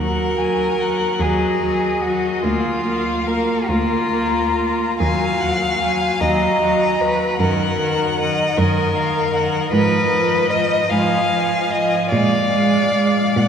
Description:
classical, slow romantic movement for string quartet; 44-54 BPM (dotted quarters); 6/8; rubato; Eb minor; A4 = 438 Hz
warm violin; melody; 0.0-13.5 s; Eb5 to Bb5; -24 LUFS; left 4 dB
rich violin; second line; 0.0-13.5 s; F4 to F5; -20 LUFS; left 1 dB
clear viola; accompaniment; 0.0-13.5 s; Eb3 to Bb3; -22 LUFS; right 1 dB
rich cello; bass; 0.0-13.5 s; D2 to Bb2; -24 LUFS; right 1 dB
wet cathedral reverb, RT60 5.9 s; recorded in a church or concert hall; -16 LUFS; side -7 dB against mid
0.0-13.5 A section
0.0 Ebm; 2.4 Bb/D; 5.0 Ebm; 7.4 Ebm/Gb; 9.7 Fm7b5/Ab; 12.1 Bb7

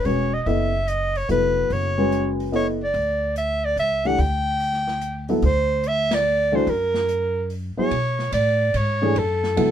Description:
modal jazz; 145 BPM; 3/4; swing 67% on 8ths; A4 = 437 Hz
breathy soprano saxophone; melody; 0.0-9.7 s; A4 to G5; -22 LUFS; right 1 dB
dark upright piano; accompaniment; 0.0-9.7 s; E3 to D#5; -22 LUFS; left 1 dB
upright bass; bass; 0.0-9.7 s; E1 to B2; -25 LUFS; equal
open jazz drum kit; drums; 0.0-9.7 s; hi-hat, ride cymbal, snare drum; -34 LUFS; equal
light reverb; minimal, uncompressed stereo recording; -19 LUFS; side -9 dB against mid
0.0-7.9 A section; 7.9-9.7 B section
band accent 6.0
0.0 F#13sus4; 2.9 Dsus4; 6.7 F#; 7.9 B9sus4

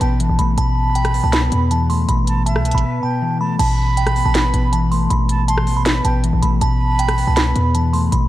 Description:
hip hop, trap; 159 BPM; 4/4; half-time; A minor; A4 = 440 Hz
glassy synth bell; melody; 0.0-8.3 s; G5 to C6; -22 LUFS; right 2 dB; chorus, low-pass filter
breathy reedy jazz flute; second line; 0.0-8.1 s; E5 to C6; -26 LUFS; right 5 dB; ping-pong delay
mellow electric guitar; accompaniment; 0.0-8.3 s; B2 to B4; -20 LUFS; left 2 dB; analog chorus, low-pass filter
hard-hitting 808-style bass; bass; 0.0-8.3 s; A1 to E2; -18 LUFS; equal
trap drum kit; drums; 0.0-8.2 s; crash cymbal, hi-hat, rim click, snare drum; -24 LUFS; equal
digital ambience; dark, warm production; -14 LUFS; side -14 dB against mid
0.0-3.6 A section; 3.6-8.3 B section
break 2.8-3.6
0.0 Asus2

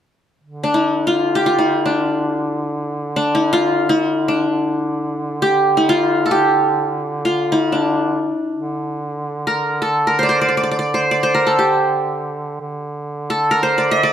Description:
arabic; free time; D maqam bayati; A4 = 440 Hz
warm duduk; drone; 0.4-14.1 s; D3; -25 LUFS; right 2 dB
qanun; melody; 0.6-14.1 s; D4 to E5-50c; -16 LUFS; equal; plate reverb
moderate studio reverb, RT60 0.8 s; -15 LUFS; side -9 dB against mid
0.4-14.1 A section

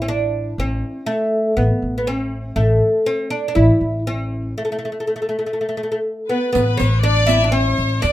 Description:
Arabic maqam ensemble; 121 BPM; 4/4; straight; A maqam rast; A4 = 440 Hz
oud; melody; 0.0-8.1 s; A3 to E4; -19 LUFS; equal
upright bass; bass; 0.0-8.1 s; A1 to E2; -19 LUFS; equal
clear studio violin section; second line; 6.3-8.1 s; B4 to E5; -24 LUFS; left 3 dB
clear violin; second line; 6.3-8.1 s; B4 to D5; -24 LUFS; left 6 dB
riq; percussion; 6.5-8.1 s; -27 LUFS; right 4 dB
light reverb; minimal, uncompressed stereo recording; -16 LUFS; side -14 dB against mid
0.0-6.5 A section; 6.5-8.1 B section
break 4.6-6.5

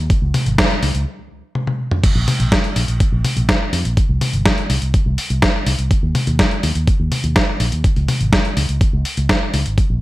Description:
italo disco; 124 BPM; 4/4; straight; A4 = 440 Hz
fingered electric bass with an envelope filter; bass; 0.0-10.0 s; G1 to F2; -19 LUFS; equal
dusty soul sampler-style drum kit; drums; 0.1-9.9 s; crash cymbal, hi-hat, snare drum, toms; -18 LUFS; equal; overdrive, gated reverb
electronic kick drum; drums; 0.1-9.9 s; -17 LUFS; equal; overdrive
light reverb; bright 1980s-style digital production; -15 LUFS; side -18 dB against mid
0.0-2.0 A section; 2.0-10.0 B section
stop 1.1-2.0; drum fill 1.6-2.0

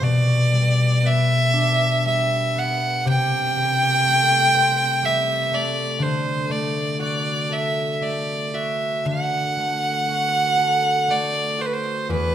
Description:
celtic folk, Celtic slow air; 60 BPM; 3/4; uneven beats, rubato; A4 = 440 Hz
bright fiddle; melody; 0.0-12.3 s; B4 to G5; -20 LUFS; right 1 dB
concert harp; accompaniment; 0.0-12.3 s; E2 to A4; -23 LUFS; left 2 dB
moderate recital hall reverb, RT60 1.8 s; minimal, uncompressed stereo recording; -18 LUFS; side -10 dB against mid
0.0-12.3 A section
0.0 G6/B; 3.1 Am7/C; 6.0 D

